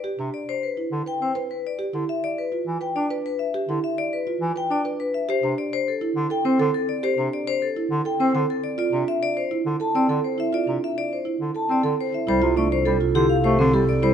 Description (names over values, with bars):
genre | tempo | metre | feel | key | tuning
classical, minimalist pattern music | 103 BPM | 3/4 | straight | unclear | A4 = 442 Hz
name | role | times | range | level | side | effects
vibraphone with hard mallets | melody | 0.0-14.1 s | G4 to A5 | -26 LUFS | left 6 dB | none
marimba with soft mallets | arpeggios | 0.0-14.1 s | C4 to B4 | -25 LUFS | right 5 dB | none
clear bass clarinet | accompaniment | 0.2-14.1 s | C3 to D4 | -26 LUFS | left 1 dB | none
mellow hollow alto flute | second line | 12.3-14.1 s | A4 | -27 LUFS | left 2 dB | none
rich studio double bass section | bass | 12.3-14.1 s | C2 | -24 LUFS | right 2 dB | none
room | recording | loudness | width
moderate large studio reverb, RT60 1.3 s | nothing above 10.4 kHz | -21 LUFS | side -8 dB against mid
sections
0.0-12.3 A section; 12.3-14.1 B section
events
none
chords
0.0 Cmaj7; 1.8 G7; 5.3 Am7; 8.8 Fmaj7; 12.3 F69/C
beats
| 0.05 0.63 1.21 | 1.79 2.38 2.96 | 3.54 4.12 4.71 | 5.29 5.87 6.45 | 7.04 7.62 8.20 | 8.78 9.37 9.95 | 10.53 11.12 11.70 | 12.28 12.86 13.45 | 14.03